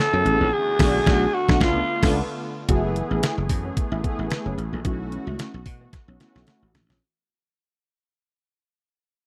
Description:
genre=early-eighties boogie funk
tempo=111 BPM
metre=4/4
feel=swing 56% on 16ths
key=F# minor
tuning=A4 = 435 Hz
part: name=growling alto saxophone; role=melody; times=0.0-2.2 s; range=E#4 to A4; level=-24 LUFS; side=equal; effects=slapback echo
part: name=brassy analog pad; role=sustained chords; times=0.0-7.0 s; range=C#3 to G#4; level=-36 LUFS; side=equal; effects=chorus
part: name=mellow electric guitar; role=riff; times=0.1-7.0 s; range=A3 to F#4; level=-37 LUFS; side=equal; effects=subtle chorus
part: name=dry thumbed slap bass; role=bass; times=0.1-7.0 s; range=F#1 to B2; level=-28 LUFS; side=equal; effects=none
part: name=mellow synth brass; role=accompaniment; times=0.2-6.7 s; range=A3 to G#4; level=-29 LUFS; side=equal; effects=chorus, phaser
part: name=detuned 8-bit digital drum machine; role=drums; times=0.3-7.0 s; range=crash cymbal, hi-hat, kick drum, snare drum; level=-25 LUFS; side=equal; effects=none
room=little or no reverb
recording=dry, close 1970s-style studio recording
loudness=-23 LUFS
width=mono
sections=0.0-2.7 A section; 2.7-7.0 B section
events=band accent 0.5-2.7; fade-out 2.7-7.0; drum fill 5.9-7.0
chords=0.0 C#m7; 0.5 Bm7; 1.6 C#7b9b13; 2.7 F#m11; 4.8 B7sus4

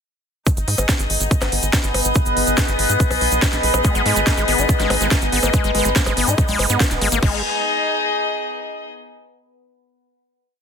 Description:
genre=psychedelic trance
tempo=142 BPM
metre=4/4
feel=straight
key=G# minor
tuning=A4 = 442 Hz
part: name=overtone-sweeping drone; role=sustained chords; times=1.2-7.2 s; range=B3 to B4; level=-24 LUFS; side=equal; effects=chorus, built-in reverb, phaser, sidechain pumping
part: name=electronic kick drum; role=drums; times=0.5-7.3 s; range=none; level=-18 LUFS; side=equal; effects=none
part: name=techno drum kit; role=drums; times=0.5-7.3 s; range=crash cymbal, hi-hat, percussion blips, snare drum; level=-22 LUFS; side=equal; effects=none
part: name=egg shaker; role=percussion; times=0.5-7.2 s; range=none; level=-28 LUFS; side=right 4 dB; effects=none
part: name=rich chamber string section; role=texture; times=0.5-8.9 s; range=D#4 to D#5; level=-23 LUFS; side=left 3 dB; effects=sidechain pumping
part: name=tight sequencer bass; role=bass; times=0.6-7.4 s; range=D#1 to G#2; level=-23 LUFS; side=equal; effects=none
part: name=overdriven acid bass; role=riff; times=3.8-7.4 s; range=G#3 to D#4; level=-23 LUFS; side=moving between left 5 dB and right 3 dB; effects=distortion, auto-pan, sidechain pumping, digital delay
part: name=formant-sweep wobble bass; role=second line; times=5.0-7.2 s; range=B3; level=-35 LUFS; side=right 1 dB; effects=none
room=light reverb, digital ambience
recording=dense, heavily limited modern master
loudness=-16 LUFS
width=side -6 dB against mid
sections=0.5-7.2 groove; 7.2-8.9 final chord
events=none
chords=0.5 G#5

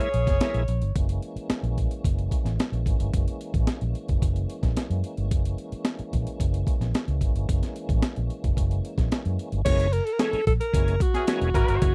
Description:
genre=funk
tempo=110 BPM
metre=4/4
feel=straight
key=F# mixolydian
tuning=A4 = 440 Hz
part: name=breathy alto saxophone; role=melody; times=0.0-1.0, 9.6-11.9 s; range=F#4 to C#5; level=-29 LUFS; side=equal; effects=none
part: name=clear horn section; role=second line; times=0.0-0.6, 11.1-11.8 s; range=E3 to A#4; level=-34 LUFS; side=equal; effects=slapback echo
part: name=bright tonewheel organ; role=stabs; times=0.0-0.6, 9.6-11.9 s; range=E3 to E4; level=-33 LUFS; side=equal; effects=chorus vibrato, slow rotary speaker
part: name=breakbeat sampler-style drum kit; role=drums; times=0.0-11.9 s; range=crash cymbal, hi-hat, kick drum, snare drum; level=-28 LUFS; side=equal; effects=none
part: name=vintage muted fingered electric bass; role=bass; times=0.1-11.9 s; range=E1 to F#2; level=-28 LUFS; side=equal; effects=none
part: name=tonewheel organ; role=sustained chords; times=1.0-9.6 s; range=E3 to C#4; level=-39 LUFS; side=equal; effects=slow rotary speaker, overdrive, chorus vibrato
room=little or no reverb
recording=dry, close 1970s-style studio recording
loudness=-26 LUFS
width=mono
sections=1.0-9.7 A section; 9.7-11.9 B section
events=none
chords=0.0 F#9 (rootless); 1.0 F#9

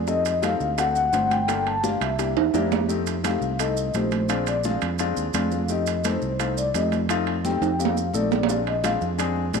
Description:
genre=Afro-Cuban jazz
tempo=171 BPM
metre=4/4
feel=straight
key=F mixolydian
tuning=A4 = 441 Hz
part: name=fingered electric bass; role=bass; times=0.0-9.6 s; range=G1 to F2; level=-28 LUFS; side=right 2 dB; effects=none
part: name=vibraphone with soft mallets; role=melody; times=0.1-9.0 s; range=C5 to A5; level=-27 LUFS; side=left 3 dB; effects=none
part: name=warm grand piano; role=accompaniment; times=0.1-9.6 s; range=Ab3 to C5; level=-27 LUFS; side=left 9 dB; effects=none
part: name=bongos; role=percussion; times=0.1-2.9 s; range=none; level=-37 LUFS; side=left 11 dB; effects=none
part: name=congas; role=percussion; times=0.1-9.6 s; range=none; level=-31 LUFS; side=right 2 dB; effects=none
part: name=maracas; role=percussion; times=0.1-9.6 s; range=none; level=-37 LUFS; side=right 18 dB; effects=none
part: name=timbales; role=percussion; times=0.3-9.6 s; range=none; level=-28 LUFS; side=right 14 dB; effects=none
room=moderate plate reverb, RT60 2.5 s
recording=1960s-style stereo with parts hard left and right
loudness=-21 LUFS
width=side -5 dB against mid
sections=0.0-2.9 A section; 2.9-9.6 B section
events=drum fill 2.4-2.9, 7.6-8.5; vibraphone solo 2.9-9.6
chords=0.1 F7; 0.8 D7; 1.5 Gm7; 2.2 C7; 2.9 F7; 4.3 Bb7; 5.7 F7; 8.5 Bb7

